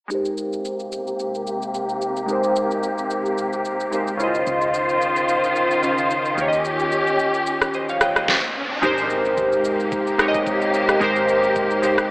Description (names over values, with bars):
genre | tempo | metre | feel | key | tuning
amapiano | 110 BPM | 4/4 | swing 55% on 16ths | Ab major | A4 = 440 Hz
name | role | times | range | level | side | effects
glassy digital keys | accompaniment | 0.1-12.1 s | Db3 to G5 | -21 LUFS | equal | chorus, low-pass filter
muted studio string section | sustained chords | 0.1-12.1 s | C3 to C5 | -22 LUFS | left 1 dB | low-pass filter
smooth R&B drum kit | drums | 0.1-12.1 s | kick drum, rim click, shaker, snare drum | -24 LUFS | equal | none
hollow-body short-scale fingered electric bass | bass | 4.5-12.1 s | Ab1 to Eb2 | -38 LUFS | equal | none
riser and impact | sound effects | 7.9-11.0 s | none | -30 LUFS | equal | none
room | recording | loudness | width
moderate lush hall reverb, RT60 2.1 s | AM radio sound | -18 LUFS | side -24 dB against mid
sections
0.1-8.8 A section; 8.8-12.1 B section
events
filter sweep 0.1-8.8; riser 7.9-8.8; impact 8.8-11.0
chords
0.1 Abmaj9; 4.2 Dbmaj9; 6.4 Eb7; 8.3 N.C.; 8.8 Abmaj9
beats
| 0.10 0.65 1.20 1.74 | 2.29 2.83 3.38 3.92 | 4.47 5.01 5.56 6.10 | 6.65 7.20 7.74 8.29 | 8.83 9.38 9.92 10.47 | 11.01 11.56 12.10